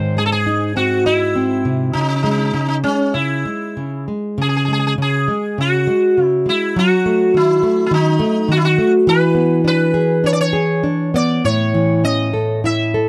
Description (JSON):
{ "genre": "fado-style ballad", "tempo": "101 BPM", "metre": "4/4", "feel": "rubato", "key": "C# minor", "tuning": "A4 = 439 Hz", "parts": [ { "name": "sitar", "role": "melody", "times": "0.0-13.1 s", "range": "C#4 to E5", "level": "-19 LUFS", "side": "equal", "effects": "none" }, { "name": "nylon-string guitar", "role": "accompaniment", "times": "0.0-13.1 s", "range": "G#2 to D#5", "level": "-20 LUFS", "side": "equal", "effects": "none" } ], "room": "little or no reverb", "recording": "dry, close 1970s-style studio recording", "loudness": "-16 LUFS", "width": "mono", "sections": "0.0-4.4 A section; 4.4-13.1 A section", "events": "none", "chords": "0.0 G#; 1.9 C#5; 6.8 D#dim; 9.1 E7; 11.4 A" }